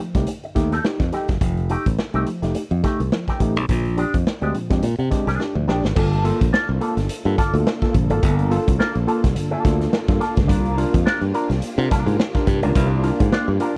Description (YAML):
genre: funk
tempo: 106 BPM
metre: 4/4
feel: swing 56% on 16ths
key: unclear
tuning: A4 = 440 Hz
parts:
  - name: electric guitar with an envelope filter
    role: accompaniment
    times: 0.0-13.7 s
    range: Ab3 to C5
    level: -28 LUFS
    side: equal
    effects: wah
  - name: overdriven tine electric piano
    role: stabs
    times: 0.0-13.8 s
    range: G2 to Bb4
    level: -27 LUFS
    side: equal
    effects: none
  - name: modern bright fingered electric bass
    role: bass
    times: 0.1-13.6 s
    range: F1 to C3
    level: -23 LUFS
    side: equal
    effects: none
  - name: raw garage drum kit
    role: drums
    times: 0.1-13.7 s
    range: crash cymbal, hi-hat, kick drum, snare drum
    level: -25 LUFS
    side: equal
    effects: none
  - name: soft string machine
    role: sustained chords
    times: 6.0-13.8 s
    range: Bb3 to A4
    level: -32 LUFS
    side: equal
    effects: ensemble chorus
room: little or no reverb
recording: dry, close 1970s-style studio recording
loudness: -20 LUFS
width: mono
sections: 0.0-6.0 A section; 6.0-13.8 B section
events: drum fill 5.4-6.0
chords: 0.0 F9; 3.7 Bb13; 6.0 Gm9; 10.5 C9sus4